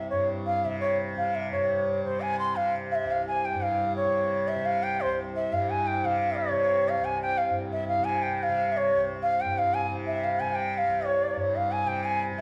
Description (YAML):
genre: indian classical, Hindustani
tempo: 176 BPM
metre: 7/4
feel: uneven beats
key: C raga bhairav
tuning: A4 = 438 Hz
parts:
  - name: bright reedy bansuri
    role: melody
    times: 0.0-12.4 s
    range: C5 to C6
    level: -28 LUFS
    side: equal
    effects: none
  - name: tanpura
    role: drone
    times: 0.0-12.4 s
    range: C2 to C3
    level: -34 LUFS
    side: equal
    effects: none
room: wet recital hall reverb, RT60 1.4 s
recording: none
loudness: -27 LUFS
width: mono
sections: 0.0-1.5 A section; 1.5-12.4 B section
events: speeding up 0.0-12.4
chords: none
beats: 0.10 0.45 0.81 1.16 | 1.51 1.87 2.22 2.57 2.92 3.27 3.62 | 3.96 4.31 4.65 5.00 5.34 5.68 6.03 | 6.37 6.71 7.05 7.39 7.72 8.06 8.40 | 8.73 9.07 9.40 9.73 10.07 10.40 10.73 | 11.06 11.39 11.71 12.04 12.37